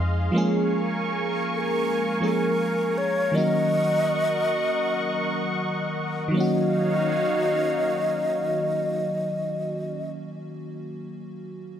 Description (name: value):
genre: contemporary R&B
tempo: free time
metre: none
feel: none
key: Eb minor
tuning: A4 = 439 Hz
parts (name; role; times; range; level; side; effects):
- FM electric piano with soft pad layer; accompaniment; 0.0-11.8 s; Eb3 to Ab4; -26 LUFS; equal; chorus
- warm analog pad; sustained chords; 0.0-10.1 s; Eb3 to Db6; -29 LUFS; equal; chorus
- mellow hollow alto flute; melody; 1.5-10.1 s; A4 to Eb5; -25 LUFS; left 1 dB; tape echo
room: moderate scoring stage reverb, RT60 1.7 s, digital ambience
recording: none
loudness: -22 LUFS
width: side -9 dB against mid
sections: 0.0-6.3 A section; 6.3-9.3 B section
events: none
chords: 0.3 Bbm7; 3.3 Ebm7